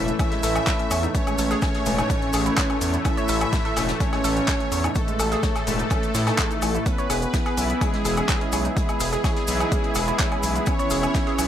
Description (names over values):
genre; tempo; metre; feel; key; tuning
melodic techno; 126 BPM; 4/4; straight; unclear; A4 = 441 Hz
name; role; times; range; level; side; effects
expressive portamento lead; melody; 0.0-11.5 s; G#3 to E4; -28 LUFS; right 1 dB; chorus, sidechain pumping, dub echo
soft supersaw; second line; 0.0-11.5 s; G#4 to E5; -32 LUFS; right 1 dB; sidechain pumping, ping-pong delay
dark analog pad; sustained chords; 0.0-11.5 s; A3 to B5; -34 LUFS; right 1 dB; chorus, sidechain pumping
analog synth brass; stabs; 0.0-11.5 s; A2 to E4; -29 LUFS; left 3 dB; chorus, sidechain pumping, ping-pong delay
gritty driven synth bass; bass; 0.0-11.5 s; E1 to A2; -27 LUFS; equal; sidechain pumping
deep house drum kit; drums; 0.1-11.5 s; handclaps, hi-hat, woodblock; -28 LUFS; left 1 dB; sidechain pumping on hats, sidechain pumping on perc
cabasa; percussion; 0.1-11.5 s; none; -36 LUFS; right 4 dB; none
woody wave-folded pluck; arpeggios; 0.2-11.4 s; G#3 to C#6; -30 LUFS; right 2 dB; chorus, sidechain pumping, ping-pong delay
big rock drum kit; drums; 0.2-11.5 s; hi-hat, snare drum; -38 LUFS; left 2 dB; none
electronic kick drum; drums; 0.2-11.2 s; none; -25 LUFS; equal; overdrive
room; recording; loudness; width
light reverb, digital ambience; none; -20 LUFS; side -10 dB against mid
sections
0.0-11.5 A section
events
none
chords
0.0 Asus2; 6.9 E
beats
0.19 0.67 | 1.15 1.62 2.10 2.58 | 3.05 3.53 4.00 4.48 | 4.96 5.43 5.91 6.38 | 6.86 7.34 7.81 8.29 | 8.77 9.24 9.72 10.19 | 10.67 11.15